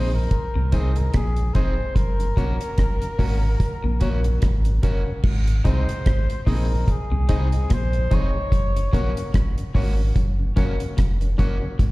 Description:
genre	roots reggae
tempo	73 BPM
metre	4/4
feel	swing 57% on 16ths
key	Ab mixolydian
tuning	A4 = 442 Hz
part	warm flugelhorn	melody	0.0-9.4 s	Ab4 to Db5	-31 LUFS	left 2 dB	dub echo, slapback echo
part	electric guitar at the edge of break-up	accompaniment	0.0-11.6 s	Bb3 to Ab4	-36 LUFS	right 2 dB	spring reverb, dub echo, slapback echo
part	clean electric guitar	riff	0.0-11.9 s	F2 to C3	-32 LUFS	left 3 dB	slapback echo
part	barky reed electric piano	stabs	0.0-11.6 s	C4 to Eb5	-34 LUFS	left 3 dB	overdrive, fast tremolo, slapback echo
part	soft dub sub bass	bass	0.0-11.9 s	F1 to C2	-21 LUFS	equal	none
part	mellow tonewheel organ	accompaniment	0.1-11.7 s	Gb2 to Db4	-34 LUFS	equal	none
part	deep reggae drum kit	drums	0.3-11.9 s	crash cymbal, hi-hat, kick drum, rim click	-22 LUFS	equal	none
room	small room ambience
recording	live gig heard through the venue's PA, recital hall reverb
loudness	-19 LUFS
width	side -20 dB against mid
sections	0.0-5.2 A section; 5.2-11.9 B section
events	none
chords	0.0 Ab; 2.0 Gb; 5.2 Ab; 8.5 Gb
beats	0.31 1.14 | 1.96 2.78 3.60 4.42 | 5.24 6.06 6.88 7.70 | 8.52 9.34 10.16 10.98 | 11.80

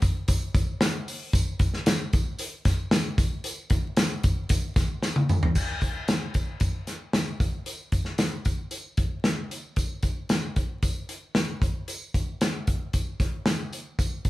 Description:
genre	soul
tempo	114 BPM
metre	4/4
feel	straight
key	none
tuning	none
part	natural country drum kit	drums	0.0-14.3 s	crash cymbal, hi-hat, kick drum, snare drum, toms	-24 LUFS	equal	none
part	tambourine	percussion	0.0-14.3 s	none	-40 LUFS	right 2 dB	none
room	moderate studio ambience, RT60 0.5 s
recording	band playing live in one room, vinyl crackle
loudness	-24 LUFS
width	side -17 dB against mid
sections	0.0-5.5 A section; 5.5-14.3 B section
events	drum fill 5.0-5.5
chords	none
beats	0.29 0.81 | 1.34 1.87 2.39 2.92 | 3.44 3.97 4.50 5.02 | 5.55 6.08 6.61 7.13 | 7.66 8.19 8.71 9.24 | 9.77 10.30 10.83 11.36 | 11.88 12.41 12.94 13.47 | 13.99

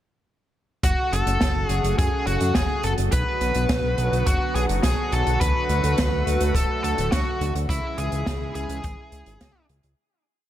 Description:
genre	synthwave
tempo	105 BPM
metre	4/4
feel	straight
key	unclear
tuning	A4 = 440 Hz
part	smooth overdriven lead guitar	melody	0.8-9.7 s	E4 to B4	-26 LUFS	equal	tape echo
part	lush unison pad	sustained chords	0.8-10.0 s	C#3 to F#4	-29 LUFS	equal	chorus, sidechain pumping
part	fat analog bass	bass	0.8-10.0 s	D1 to F#2	-25 LUFS	equal	sidechain pumping
part	kick drum	drums	0.8-9.5 s	none	-26 LUFS	equal	none
part	open jazz drum kit	drums	0.8-9.9 s	hi-hat, snare drum	-29 LUFS	right 1 dB	none
room	light reverb, studio reverb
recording	none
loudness	-20 LUFS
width	side -12 dB against mid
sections	0.8-10.0 verse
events	fade-out 6.9-10.0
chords	0.8 F#m; 3.1 Bm; 5.4 D; 7.7 C#m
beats	| 0.84 1.41 1.98 2.55 | 3.12 3.69 4.27 4.84 | 5.41 5.98 6.55 7.12 | 7.70 8.27 8.84 9.41

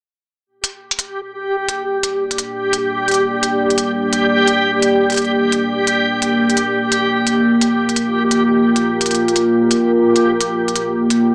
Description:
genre	half-time drum and bass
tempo	172 BPM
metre	4/4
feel	swing 57% on 16ths, half-time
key	G minor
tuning	A4 = 441 Hz
part	deep dark ambient pad	sustained chords	2.3-11.3 s	Bb3 to D5	-19 LUFS	equal	chorus, built-in reverb
part	backwards swelling texture	texture	1.1-11.3 s	G4	-20 LUFS	equal	built-in reverb
part	electronic hi-hat	drums	0.6-11.2 s	none	-24 LUFS	equal	overdrive
room	moderate spring reverb, RT60 1.7 s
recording	small speaker sound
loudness	-16 LUFS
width	mono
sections	0.5-11.3 A section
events	none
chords	0.5 Gm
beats	| 0.46 0.81 1.16 1.51 | 1.86 2.21 2.56 2.91 | 3.25 3.60 3.95 4.30 | 4.65 5.00 5.35 5.70 | 6.04 6.39 6.74 7.09 | 7.44 7.79 8.14 8.49 | 8.84 9.19 9.53 9.88 | 10.23 10.58 10.93 11.28

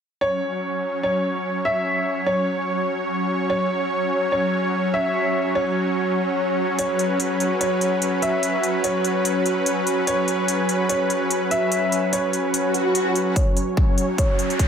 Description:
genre	heavy wobble dubstep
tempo	146 BPM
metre	4/4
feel	swing 55% on 16ths, half-time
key	unclear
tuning	A4 = 440 Hz
part	clear baby grand piano	melody	0.2-14.7 s	C#5 to E5	-25 LUFS	equal	low-pass filter, digital delay
part	supersaw pad	sustained chords	0.2-14.7 s	F#3 to C#5	-23 LUFS	equal	sidechain pumping, low-pass filter
part	deep dark ambient pad	texture	1.5-14.7 s	F#4 to G#5	-26 LUFS	equal	chorus, built-in reverb, sidechain pumping
part	electronic hi-hat	drums	6.8-14.7 s	none	-27 LUFS	equal	none
part	swell and riser	sound effects	12.7-14.7 s	none	-26 LUFS	equal	none
part	electronic kick drum	drums	13.4-14.7 s	none	-19 LUFS	equal	none
room	moderate digital room reverb, RT60 1.2 s, digital ambience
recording	none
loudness	-19 LUFS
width	side -7 dB against mid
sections	0.2-13.4 A section; 13.4-14.7 B section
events	swell 12.7-13.4; build-up 13.4-14.7; riser 13.4-14.7; filter sweep on supersaw synth 13.4-14.7; filter sweep on grand piano 13.4-14.7; filter sweep 13.4-14.7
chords	0.2 F#5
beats	| 0.21 0.62 1.03 1.44 | 1.85 2.27 2.68 3.09 | 3.50 3.91 4.32 4.73 | 5.14 5.55 5.96 6.38 | 6.79 7.20 7.61 8.02 | 8.43 8.84 9.25 9.66 | 10.07 10.48 10.89 11.31 | 11.72 12.13 12.54 12.95 | 13.36 13.77 14.18 14.59

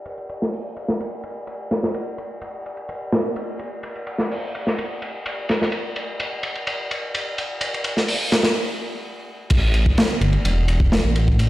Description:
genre	breakbeat, breaks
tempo	127 BPM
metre	4/4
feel	straight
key	unclear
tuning	A4 = 440 Hz
part	crunchy breakbeat drum kit	drums	0.1-11.5 s	crash cymbal, hi-hat, kick drum, ride cymbal, snare drum	-22 LUFS	equal	high-pass filter on kick, high-pass filter on cymbals, high-pass filter on hats, high-pass filter on snare, high-pass filter on room
part	dark detuned saw bass	bass	9.5-11.5 s	E1 to A1	-18 LUFS	equal	none
room	moderate lush hall reverb, RT60 2.0 s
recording	played on a big sound system in a bare room, stone room reverb, low-pass filter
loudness	-20 LUFS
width	side -16 dB against mid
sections	0.0-9.5 A section; 9.5-11.5 B section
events	filter sweep 0.0-9.5; stop 8.6-9.5; drop 9.5-11.5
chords	none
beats	| 0.05 0.53 1.00 1.47 | 1.94 2.42 2.89 3.36 | 3.83 4.31 4.78 5.25 | 5.72 6.20 6.67 7.14 | 7.61 8.09 8.56 9.03 | 9.50 9.97 10.45 10.92 | 11.39

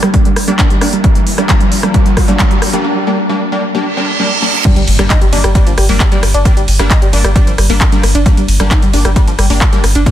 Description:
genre	driving peak-time techno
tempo	133 BPM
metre	4/4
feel	straight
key	G minor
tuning	A4 = 436 Hz
part	overdriven synth lead	riff	0.0-10.1 s	F3 to Eb4	-18 LUFS	right 1 dB	chorus, sidechain pumping, digital delay
part	rave stab	stabs	0.0-10.1 s	G3 to D4	-17 LUFS	left 1 dB	chorus, built-in reverb, sidechain pumping, digital delay
part	techno drum kit	drums	0.0-10.1 s	crash cymbal, handclaps, hi-hat, ride cymbal, rim click	-17 LUFS	equal	sidechain pumping on hats, sidechain pumping on cymbals
part	riser, reverse cymbal and impact	sound effects	0.3-6.5 s	none	-20 LUFS	right 2 dB	none
part	electronic kick drum	drums	0.1-10.1 s	none	-11 LUFS	equal	none
part	warm sub bass	bass	4.8-10.1 s	G1	-13 LUFS	equal	tube saturation, sidechain pumping, low-pass filter
room	light reverb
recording	dense, heavily limited modern master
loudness	-9 LUFS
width	side -12 dB against mid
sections	0.0-4.7 A section; 4.7-10.1 B section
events	build-up 0.0-4.7; riser 0.3-2.8; filter sweep on analog synth lead 0.0-4.7; break 2.8-4.7; reverse cymbal 3.9-4.7; drop 4.7-10.1; impact 4.7-6.5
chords	0.0 Gm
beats	0.14 0.59 | 1.04 1.49 1.94 2.39 | 2.85 3.30 3.75 4.20 | 4.65 5.10 5.55 6.00 | 6.45 6.91 7.36 7.81 | 8.26 8.71 9.16 9.61 | 10.06

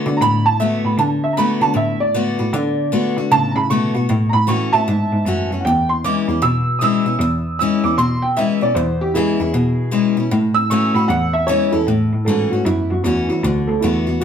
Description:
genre	rock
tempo	154 BPM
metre	4/4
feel	swing 64% on 8ths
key	A major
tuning	A4 = 436 Hz
part	picked steel-string acoustic guitar	accompaniment	0.0-14.2 s	E2 to F#4	-20 LUFS	left 3 dB	none
part	rich cello	bass	0.1-14.2 s	D2 to D3	-20 LUFS	equal	none
part	dark upright piano	melody	0.2-14.2 s	E4 to E6	-19 LUFS	right 2 dB	none
room	moderate studio reverb, RT60 0.8 s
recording	band playing live in one room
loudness	-15 LUFS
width	side -8 dB against mid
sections	0.0-11.9 A section; 11.9-14.2 B section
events	upright piano solo 0.0-11.9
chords	0.0 D6; 4.1 A6; 5.6 E6; 10.3 A6; 11.1 E6; 11.9 A6; 13.4 D6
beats	0.21 0.60 | 0.99 1.38 1.76 2.15 | 2.54 2.93 3.32 3.71 | 4.09 4.48 4.87 5.26 | 5.65 6.04 6.43 6.82 | 7.20 7.59 7.98 8.37 | 8.76 9.15 9.54 9.93 | 10.32 10.71 11.10 11.49 | 11.88 12.27 12.66 13.05 | 13.44 13.83 14.22

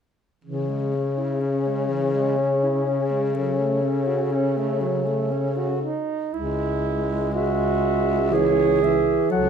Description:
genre	classical, lyrical piece for single-reed quartet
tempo	61 BPM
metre	3/4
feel	rubato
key	C# minor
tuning	A4 = 435 Hz
part	clear alto saxophone	second line	0.4-9.5 s	E3 to A4	-25 LUFS	right 9 dB	none
part	mellow tenor saxophone	accompaniment	0.4-9.5 s	E3 to C#4	-26 LUFS	left 4 dB	none
part	clear baritone saxophone	bass	0.4-9.5 s	C#2 to C#3	-25 LUFS	equal	none
part	clear clarinet	melody	0.5-9.5 s	G#4 to F#5	-29 LUFS	left 8 dB	none
room	moderate recital hall reverb, RT60 1.5 s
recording	minimal, uncompressed stereo recording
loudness	-20 LUFS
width	side -7 dB against mid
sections	0.4-6.3 A section; 6.3-9.5 B section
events	none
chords	0.4 C#m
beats	| 0.44 1.42 2.39 | 3.35 4.32 5.32 | 6.34 7.34 8.32 | 9.31

